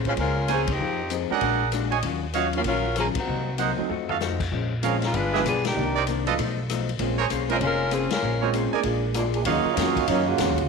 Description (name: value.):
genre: jazz, big band swing.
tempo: 194 BPM.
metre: 4/4.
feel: swing 63% on 8ths.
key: Bb minor.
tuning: A4 = 440 Hz.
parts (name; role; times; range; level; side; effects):
vintage hollow-body jazz guitar; accompaniment; 0.0-10.6 s; Bb2 to D5; -30 LUFS; left 13 dB; none.
upright bass; bass; 0.0-10.7 s; F1 to Gb2; -29 LUFS; equal; none.
swinging big-band drum kit; drums; 0.0-10.6 s; crash cymbal, hi-hat, kick drum, ride cymbal, rim click, snare drum, toms; -32 LUFS; left 6 dB; none.
warm saxophone section; melody; 0.1-8.5 s; Eb3 to B4; -26 LUFS; left 2 dB; none.
warm upright piano; accompaniment; 0.1-9.6 s; Eb3 to C5; -31 LUFS; right 12 dB; none.
bright trumpet section; stabs; 0.5-10.3 s; Eb4 to Ab5; -28 LUFS; right 9 dB; none.
clear trombone section; second line; 9.1-10.7 s; Db3 to Ab4; -25 LUFS; right 10 dB; none.
room: moderate echo chamber reverb, RT60 1.4 s, small room ambience.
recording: 1960s-style stereo with parts hard left and right.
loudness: -22 LUFS.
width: side -4 dB against mid.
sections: 0.0-9.5 A section; 9.5-10.7 B section.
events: band accent 0.6, 3.1, 5.6, 8.1; drum fill 3.9-4.2; trombone section solo 9.5-10.7.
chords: 0.0 Bbm9; 0.8 Fm7; 1.4 Bb7alt; 2.0 Ebm9; 3.3 Cm7b5; 3.9 F7b9; 4.5 Bbm7; 5.1 G7b9; 5.8 Cm9; 6.4 B7#11; 7.0 Bbm9; 8.8 Bb7; 9.5 Ebm9.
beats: 0.17 0.48 | 0.79 1.10 1.41 1.72 | 2.04 2.35 2.65 2.97 | 3.28 3.59 3.90 4.21 | 4.52 4.83 5.13 5.45 | 5.75 6.06 6.37 6.68 | 6.99 7.30 7.61 7.92 | 8.23 8.54 8.85 9.16 | 9.46 9.77 10.08 10.39.